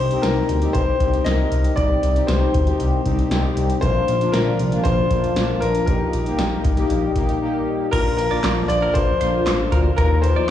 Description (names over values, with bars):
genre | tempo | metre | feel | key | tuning
synth-pop | 117 BPM | 4/4 | straight | Bb major | A4 = 440 Hz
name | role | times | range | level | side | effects
clear grand piano | melody | 0.0-10.5 s | Bb4 to Eb5 | -22 LUFS | left 3 dB | slapback echo
analog synth brass | accompaniment | 0.0-10.5 s | Bb3 to Bb4 | -24 LUFS | left 2 dB | chorus
phased analog pad | sustained chords | 0.0-10.5 s | Bb2 to G4 | -27 LUFS | equal | phaser, chorus
smooth synth bass | bass | 0.0-10.3 s | A1 to Eb2 | -22 LUFS | equal | none
electro analog drum machine | drums | 0.1-10.4 s | crash cymbal, handclaps, hi-hat, kick drum, snare drum | -24 LUFS | equal | none
direct-recorded clean electric guitar | second line | 7.9-10.4 s | Bb4 to D5 | -28 LUFS | right 5 dB | phaser, slapback echo
room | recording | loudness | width
moderate digital room reverb, RT60 1.2 s, digital ambience | played on a big sound system in a bare room, stone room reverb, small room ambience | -17 LUFS | side -11 dB against mid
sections
0.0-7.9 A section; 7.9-10.5 B section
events
break 7.4-7.9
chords
0.0 Cm; 3.8 Bb; 5.9 Eb/Bb; 7.9 Bb; 10.0 Ebsus2